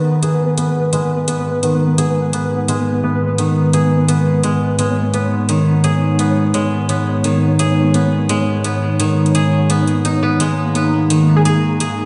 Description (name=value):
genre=half-time drum and bass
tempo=171 BPM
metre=4/4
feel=half-time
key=G# minor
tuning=A4 = 439 Hz
part: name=deep dark ambient pad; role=sustained chords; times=0.6-12.1 s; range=G#3 to D#5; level=-20 LUFS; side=equal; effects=chorus, built-in reverb
part: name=koto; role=arpeggios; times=0.0-12.1 s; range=D#3 to G#4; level=-19 LUFS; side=equal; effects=low-pass filter, delay
part: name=pulsing gated texture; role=texture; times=0.0-12.1 s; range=A#3 to A#5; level=-23 LUFS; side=equal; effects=chorus, built-in reverb
part: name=electronic hi-hat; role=drums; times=0.2-11.9 s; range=none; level=-27 LUFS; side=equal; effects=none
part: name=plucky unison lead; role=melody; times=11.4-11.5 s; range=G#4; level=-25 LUFS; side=equal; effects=delay
room=moderate huge ambient reverb, RT60 8.2 s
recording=played on a big sound system in a bare room, stone room reverb, nothing above 10.6 kHz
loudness=-16 LUFS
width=mono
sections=0.0-12.1 A section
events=filter sweep on ambient pad 0.0-12.1; filter sweep on koto 0.0-12.1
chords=0.0 G#m